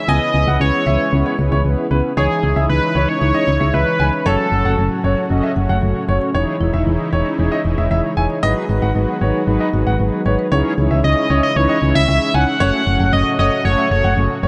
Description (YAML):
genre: pop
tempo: 115 BPM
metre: 4/4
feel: straight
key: C# minor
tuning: A4 = 441 Hz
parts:
  - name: octave-doubled lead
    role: melody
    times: 0.0-5.3, 11.0-14.4 s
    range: G#4 to F#5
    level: -21 LUFS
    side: equal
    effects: chorus, tape echo
  - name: mellow synth brass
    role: accompaniment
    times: 0.0-14.5 s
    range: A3 to E5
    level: -24 LUFS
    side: equal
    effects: chorus
  - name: lush unison pad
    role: sustained chords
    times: 0.0-14.5 s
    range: A2 to F#4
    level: -27 LUFS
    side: equal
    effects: chorus
  - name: clear concert grand piano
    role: second line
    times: 0.1-14.5 s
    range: B4 to G#5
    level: -26 LUFS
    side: equal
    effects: tape echo
  - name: solid FM bass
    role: bass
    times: 0.1-14.5 s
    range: E1 to C#2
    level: -20 LUFS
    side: equal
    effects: none
  - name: marimba with medium mallets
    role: arpeggios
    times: 2.2-10.5 s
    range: E3 to C#6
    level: -28 LUFS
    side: equal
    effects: tape echo
room: light reverb, studio reverb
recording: nothing above 10.7 kHz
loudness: -17 LUFS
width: mono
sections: 0.0-2.2 A section; 2.2-10.5 B section; 10.5-14.5 A section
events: none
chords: 0.1 C#m7; 2.2 C#madd9; 4.3 F#m; 6.3 C#madd9/E; 8.4 G#m7; 10.5 C#madd9; 12.6 F#m